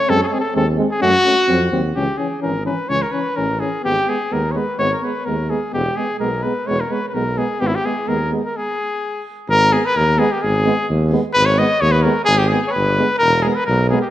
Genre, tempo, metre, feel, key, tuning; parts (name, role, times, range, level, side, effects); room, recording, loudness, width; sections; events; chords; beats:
balkan folk, Balkan brass band; 128 BPM; 2/4; swing 53% on 16ths; A4 = 442 Hz
warm cornet; melody; 0.0-14.1 s; E4 to D#5; -18 LUFS; left 1 dB
clear euphonium; accompaniment; 0.1-14.0 s; B3 to C#4; -25 LUFS; left 3 dB
mellow trombone; accompaniment; 0.1-14.0 s; E3 to A3; -25 LUFS; right 5 dB
mellow tuba; bass; 0.1-13.9 s; E1 to F#2; -21 LUFS; equal
moderate recital hall reverb, RT60 1.8 s; -15 LUFS; side -13 dB against mid
0.0-2.0 A section; 2.0-9.5 B section; 9.5-14.1 C section
stop 8.6-9.5
0.1 G#/F#; 1.0 F#m; 1.5 D#m69; 2.0 C#m; 3.8 G#m; 5.7 E; 7.6 G#m; 8.6 N.C.; 9.5 G#m; 13.2 E
| 0.09 0.56 | 1.02 1.49 | 1.96 2.43 | 2.90 3.38 | 3.85 4.32 | 4.79 5.26 | 5.74 6.21 | 6.68 7.15 | 7.62 8.09 | 8.56 9.02 | 9.49 9.96 | 10.43 10.89 | 11.36 11.82 | 12.29 12.75 | 13.22 13.68